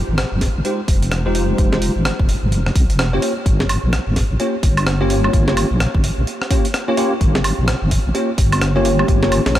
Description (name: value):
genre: UK garage, two-step garage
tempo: 128 BPM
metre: 4/4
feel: swing 61% on 16ths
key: unclear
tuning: A4 = 436 Hz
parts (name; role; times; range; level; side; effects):
- deep soft wobble bass; bass; 0.0-9.6 s; F1 to C2; -18 LUFS; equal; chorus
- breakbeat sampler-style drum kit; drums; 0.2-9.6 s; hi-hat, rim click, snare drum, woodblock; -22 LUFS; right 1 dB; none
- electronic kick drum; drums; 0.4-9.2 s; none; -17 LUFS; equal; none
- bell-like tine electric piano; stabs; 0.6-9.4 s; Ab3 to Db5; -21 LUFS; equal; ensemble chorus, low-pass filter, analog delay
room: light reverb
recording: none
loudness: -15 LUFS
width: side -13 dB against mid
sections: 0.0-9.6 A section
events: none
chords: 0.0 Fm9; 3.2 Gm7b5